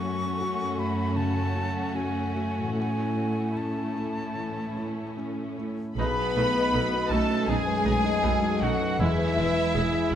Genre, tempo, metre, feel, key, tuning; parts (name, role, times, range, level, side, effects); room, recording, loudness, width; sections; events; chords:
cinematic; 73-81 BPM; 4/4; rubato; A4 = 442 Hz
rich symphonic violin section; melody; 0.0-10.1 s; E4 to B5; -34 LUFS; left 1 dB
bright silver concert flute; second line; 0.0-10.2 s; E5 to C#6; -34 LUFS; left 1 dB
rich symphonic violin section; second line; 0.0-10.1 s; C#4 to B4; -34 LUFS; left 2 dB
clear concert grand piano; accompaniment; 0.0-10.2 s; B1 to B4; -31 LUFS; left 2 dB
rich symphonic viola section; accompaniment; 0.0-9.8 s; G#3 to E4; -35 LUFS; right 2 dB
concert harp; arpeggios; 0.0-10.2 s; E2 to B5; -35 LUFS; left 7 dB
clear symphonic cello section; bass; 0.0-10.1 s; F#2 to B3; -32 LUFS; right 3 dB
warm cor anglais; second line; 6.0-10.2 s; E4 to B4; -32 LUFS; right 3 dB
mellow French horn section; sustained chords; 6.0-10.1 s; F#4 to B4; -34 LUFS; left 1 dB
rich studio double bass section; bass; 6.0-9.8 s; E1 to B1; -32 LUFS; right 3 dB
moderate scoring stage reverb, RT60 2.0 s; -24 LUFS; side -9 dB against mid
0.0-6.0 A section; 6.0-10.2 A section
0.0 F#m; 2.8 A; 6.0 B7; 9.0 E